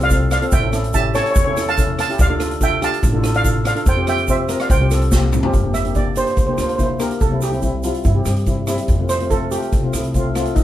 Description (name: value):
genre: calypso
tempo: 143 BPM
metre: 4/4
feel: straight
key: F major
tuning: A4 = 441 Hz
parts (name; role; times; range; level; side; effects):
- steel pan; melody; 0.0-10.6 s; Eb4 to A5; -21 LUFS; right 2 dB; none
- steel pan; accompaniment; 0.0-10.5 s; G3 to Bb4; -23 LUFS; left 1 dB; none
- upright bass; bass; 0.0-10.6 s; G1 to G2; -21 LUFS; equal; none
- street-band drum kit; drums; 0.0-10.6 s; hi-hat, kick drum, rim click, snare drum, toms; -20 LUFS; equal; none
- egg shaker; percussion; 0.1-10.6 s; none; -32 LUFS; right 6 dB; none
room: moderate studio ambience, RT60 0.5 s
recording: band playing live in one room, lossy compression artefacts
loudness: -15 LUFS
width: side -13 dB against mid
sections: 0.0-5.5 A section; 5.5-10.6 B section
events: drum fill 5.1-5.5; steel pan solo 5.5-10.6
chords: 0.0 F; 0.5 A7; 2.2 Dm; 3.9 Fsus2; 5.5 Gm; 7.2 C; 8.9 F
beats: 0.11 | 0.52 0.94 1.36 1.78 | 2.19 2.61 3.03 3.45 | 3.87 4.28 4.70 5.12 | 5.54 5.96 6.38 6.79 | 7.21 7.63 8.05 8.47 | 8.89 9.31 9.73 10.15 | 10.57